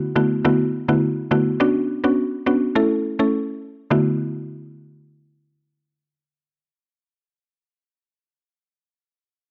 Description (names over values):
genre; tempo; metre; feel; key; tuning
afrobeats; 104 BPM; 4/4; straight; D major; A4 = 441 Hz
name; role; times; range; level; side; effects
mallet-like synth pluck; accompaniment; 0.0-7.1 s; D3 to A4; -21 LUFS; equal; chorus, cassette tape
room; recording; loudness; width
little or no reverb; home recording on cassette; -20 LUFS; mono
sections
0.0-3.9 A section; 3.9-6.2 B section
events
none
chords
0.0 D6; 1.6 Bmadd9; 2.8 A; 3.9 D6